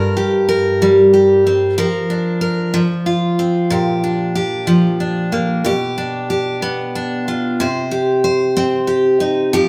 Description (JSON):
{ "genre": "pop", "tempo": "62 BPM (dotted quarters)", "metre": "6/8", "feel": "straight", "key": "unclear", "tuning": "A4 = 438 Hz", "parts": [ { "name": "picked steel-string acoustic guitar", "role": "solo", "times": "0.0-9.7 s", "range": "G2 to C5", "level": "-16 LUFS", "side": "equal", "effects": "none" } ], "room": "wet stone room reverb, RT60 1.2 s", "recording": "band playing live in one room", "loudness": "-16 LUFS", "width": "mono", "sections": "0.0-9.7 A section", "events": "none", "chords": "0.0 C5/G; 1.8 Bb/F; 2.8 F5; 3.7 Bb6; 5.7 G7/B; 7.6 Cm", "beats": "0.82 | 1.78 2.75 | 3.72 4.69 | 5.66 6.63 | 7.60 8.57 | 9.54" }